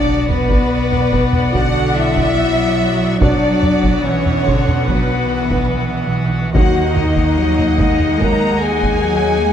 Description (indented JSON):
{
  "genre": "cinematic, epic orchestral film score",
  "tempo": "72 BPM",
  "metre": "4/4",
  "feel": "straight",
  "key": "unclear",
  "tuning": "A4 = 441 Hz",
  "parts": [
    { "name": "warm symphonic violin section", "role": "melody", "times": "0.0-9.5 s", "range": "B4 to A#5", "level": "-26 LUFS", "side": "left 1 dB", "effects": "none" },
    { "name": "rich symphonic violin section", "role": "second line", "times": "0.0-9.5 s", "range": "B4 to A#5", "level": "-25 LUFS", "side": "right 1 dB", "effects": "none" },
    { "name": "rich symphonic viola section", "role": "accompaniment", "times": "0.0-9.5 s", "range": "D4 to F#5", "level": "-24 LUFS", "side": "left 2 dB", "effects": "none" },
    { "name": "dark French horn section", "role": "sustained chords", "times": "0.0-9.5 s", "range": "B3 to A#4", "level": "-19 LUFS", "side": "left 4 dB", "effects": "none" },
    { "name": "pipe organ, clarinet reed", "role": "sustained chords", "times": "0.0-9.5 s", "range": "A#3 to F#5", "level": "-26 LUFS", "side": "equal", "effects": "none" },
    { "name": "warm trombone section", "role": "sustained chords", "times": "0.0-8.5 s", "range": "F#3 to D#4", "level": "-27 LUFS", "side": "right 6 dB", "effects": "none" },
    { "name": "warm symphonic double bass section", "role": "bass", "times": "0.0-9.5 s", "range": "B1 to D#2", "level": "-20 LUFS", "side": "right 2 dB", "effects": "none" },
    { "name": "impact", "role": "sound effects", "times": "0.0-3.2 s", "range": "none", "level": "-28 LUFS", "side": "equal", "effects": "none" },
    { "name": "taiko ensemble", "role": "drums", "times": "0.3-9.5 s", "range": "none", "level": "-19 LUFS", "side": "equal", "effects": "none" },
    { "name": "dark symphonic cello section", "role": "bass", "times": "1.5-9.5 s", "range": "D3 to G#3", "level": "-21 LUFS", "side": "right 2 dB", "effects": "none" }
  ],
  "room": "light reverb",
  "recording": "close, detailed microphones",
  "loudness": "-13 LUFS",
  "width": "side -9 dB against mid",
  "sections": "0.0-9.5 A section",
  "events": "impact 0.0-3.2",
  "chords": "0.0 Bm; 6.5 D#m"
}